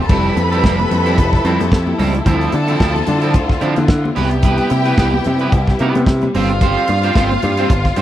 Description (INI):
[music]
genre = disco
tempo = 110 BPM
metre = 4/4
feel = swing 56% on 16ths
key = C major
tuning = A4 = 442 Hz
[part]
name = warm studio violin section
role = second line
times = 0.0-8.0 s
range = F4 to B5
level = -22 LUFS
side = equal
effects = none
[part]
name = clear studio string section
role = sustained chords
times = 0.0-8.0 s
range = C3 to A4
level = -22 LUFS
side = left 2 dB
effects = none
[part]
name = picked electric bass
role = bass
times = 0.0-8.0 s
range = F1 to D3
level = -18 LUFS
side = equal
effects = none
[part]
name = electric guitar at the edge of break-up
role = accompaniment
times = 0.1-8.0 s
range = F3 to C5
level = -20 LUFS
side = right 4 dB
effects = analog chorus
[part]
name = modern studio drum kit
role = drums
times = 0.1-8.0 s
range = crash cymbal, hi-hat, kick drum, snare drum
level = -16 LUFS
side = equal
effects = none
[part]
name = congas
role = percussion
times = 0.1-8.0 s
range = none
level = -24 LUFS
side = left 4 dB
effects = none
[sound]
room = small room ambience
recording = dry, close 1970s-style studio recording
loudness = -13 LUFS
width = side -12 dB against mid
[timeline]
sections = 0.0-8.0 A section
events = none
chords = 0.1 Fmaj9; 2.3 Dm9; 4.2 Cmaj7; 6.3 G7sus4